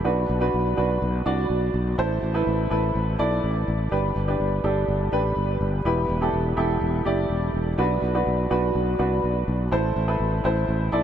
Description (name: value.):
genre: piano-driven pop.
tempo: 124 BPM.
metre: 4/4.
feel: straight.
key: unclear.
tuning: A4 = 439 Hz.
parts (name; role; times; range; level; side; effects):
clear upright piano; accompaniment; 0.0-11.0 s; B2 to D5; -24 LUFS; right 1 dB; wide subtle chorus.
sustaining fretless electric bass; bass; 0.1-11.0 s; E1 to C2; -24 LUFS; equal; none.
room: moderate huge ambient reverb, RT60 8.6 s.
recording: dreamy mix soaked in reverb.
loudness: -21 LUFS.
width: side -9 dB against mid.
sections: 0.0-11.0 A section.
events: none.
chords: 0.0 Bm; 2.0 Am; 3.9 G; 5.9 Em; 7.8 Bm; 9.7 Am.